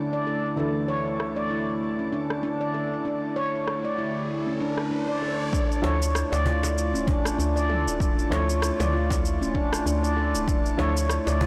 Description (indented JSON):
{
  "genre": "organic downtempo",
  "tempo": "97 BPM",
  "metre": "4/4",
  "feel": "swing 56% on 16ths",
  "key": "D harmonic minor",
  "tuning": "A4 = 440 Hz",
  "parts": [
    { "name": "felt-muted upright piano", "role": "accompaniment", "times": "0.0-10.9 s", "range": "D2 to A4", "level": "-38 LUFS", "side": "equal", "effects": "sidechain pumping, digital delay, shimmer reverb" },
    { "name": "warbly tape-like pad", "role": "sustained chords", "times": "0.0-11.5 s", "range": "D3 to F4", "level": "-34 LUFS", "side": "equal", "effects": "chorus, built-in reverb, sidechain pumping, shimmer reverb" },
    { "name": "handpan", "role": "arpeggios", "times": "0.0-11.5 s", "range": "C#4 to D5", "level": "-29 LUFS", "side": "equal", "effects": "digital delay, shimmer reverb" },
    { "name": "deep house drum kit", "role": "drums", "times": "0.1-11.4 s", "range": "rim click, shaker, toms", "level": "-35 LUFS", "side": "equal", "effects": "overdrive, low-pass filter on perc, small room ambience, low-pass filter on snare, low-pass filter on toms" },
    { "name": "riser", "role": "sound effects", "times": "3.1-5.5 s", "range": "none", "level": "-42 LUFS", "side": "equal", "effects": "none" },
    { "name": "electronic kick drum", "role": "drums", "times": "5.5-10.6 s", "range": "none", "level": "-29 LUFS", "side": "equal", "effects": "overdrive, small room ambience" },
    { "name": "woody FM bass", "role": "bass", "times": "5.8-11.5 s", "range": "D1 to D2", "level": "-29 LUFS", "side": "equal", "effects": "tube saturation" },
    { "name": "cajon", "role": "percussion", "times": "5.8-11.5 s", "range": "none", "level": "-34 LUFS", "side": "equal", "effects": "none" }
  ],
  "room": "moderate lush hall reverb, RT60 3.0 s",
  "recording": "blown-out, overdriven recording, overdrive",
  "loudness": "-26 LUFS",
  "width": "mono",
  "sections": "0.0-5.5 A section; 5.5-11.5 B section",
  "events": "riser 3.1-5.5",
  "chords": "0.0 Asus4/D; 5.5 Dmadd9",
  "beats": "| 0.58 1.20 1.82 2.44 | 3.05 3.67 4.29 4.91 | 5.53 6.15 6.76 7.38 | 8.00 8.62 9.24 9.86 | 10.48 11.10"
}